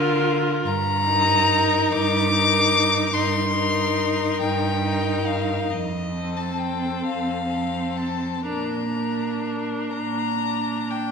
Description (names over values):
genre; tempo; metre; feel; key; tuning
classical, slow romantic movement for string quartet; 40-50 BPM (dotted quarters); 6/8; rubato; Bb major; A4 = 440 Hz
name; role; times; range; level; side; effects
rich violin; melody; 0.0-11.1 s; A4 to Bb5; -28 LUFS; left 8 dB; none
warm viola; accompaniment; 0.0-11.1 s; C4 to F4; -27 LUFS; equal; none
rich cello; bass; 0.0-11.1 s; F2 to D3; -26 LUFS; right 5 dB; none
rich violin; second line; 0.7-9.9 s; Eb5 to D6; -23 LUFS; left 3 dB; none
room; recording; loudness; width
moderate scoring stage reverb, RT60 1.5 s; minimal, uncompressed stereo recording; -20 LUFS; side -5 dB against mid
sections
0.0-11.1 A section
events
none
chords
0.0 Bb/D; 0.7 Eb/G; 5.7 F; 8.5 Bb